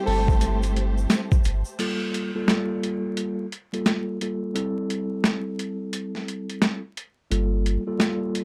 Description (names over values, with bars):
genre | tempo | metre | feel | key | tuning
hip hop, boom-bap hip-hop | 87 BPM | 4/4 | swing 63% on 16ths | G dorian | A4 = 440 Hz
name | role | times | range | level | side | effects
mellow electric guitar | melody | 0.0-0.6 s | A4 | -31 LUFS | equal | tape echo
mellow tine electric piano | accompaniment | 0.0-8.4 s | G3 to A4 | -30 LUFS | equal | none
dark studio string section | sustained chords | 0.0-1.8 s | G4 to A5 | -42 LUFS | equal | none
warm symphonic string section | stabs | 0.0-1.7 s | A3 to C5 | -36 LUFS | equal | tape echo
saturated sub bass | bass | 0.1-1.6, 7.3-7.8 s | G1 | -26 LUFS | equal | transformer saturation
boom bap sampler-style drum kit | drums | 0.1-8.4 s | crash cymbal, hi-hat, kick drum, snare drum | -26 LUFS | equal | overdrive
egg shaker | percussion | 0.3-1.8 s | none | -48 LUFS | equal | none
room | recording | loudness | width
little or no reverb | dry, gritty hardware recording, transformer saturation, vinyl crackle | -25 LUFS | mono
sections
0.0-1.8 A section; 1.8-8.4 B section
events
break 1.8-8.4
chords
0.0 Am7; 1.8 Gm9; 4.5 Am7; 7.3 Gm9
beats
0.41 1.10 | 1.79 2.48 3.17 3.86 | 4.55 5.24 5.93 6.62 | 7.31 8.00